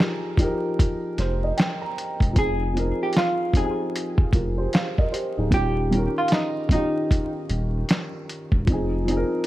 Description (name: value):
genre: lo-fi hip hop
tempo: 76 BPM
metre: 4/4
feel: swing 63% on 16ths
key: F minor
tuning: A4 = 440 Hz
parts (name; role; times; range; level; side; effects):
- dark upright piano; accompaniment; 0.0-9.5 s; Eb3 to Bb5; -26 LUFS; equal; low-pass filter
- lo-fi sampler-style drum kit; drums; 0.0-9.5 s; hi-hat, kick drum, snare drum; -21 LUFS; equal; overdrive
- saturated sub bass; bass; 1.2-9.2 s; D1 to F1; -25 LUFS; equal; none
- vintage hollow-body jazz guitar; melody; 2.4-7.3 s; Eb4 to Ab4; -26 LUFS; right 1 dB; low-pass filter, analog delay
room: digital ambience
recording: vinyl crackle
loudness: -21 LUFS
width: side -15 dB against mid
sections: 0.0-2.4 A section; 2.4-9.5 A section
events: upright piano fill 0.8-2.4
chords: 0.0 Fm9; 2.4 Fm7; 5.5 Eb9; 8.7 Fm7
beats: 0.78 1.57 | 2.36 3.15 3.94 4.73 | 5.52 6.31 7.10 7.89 | 8.68 9.47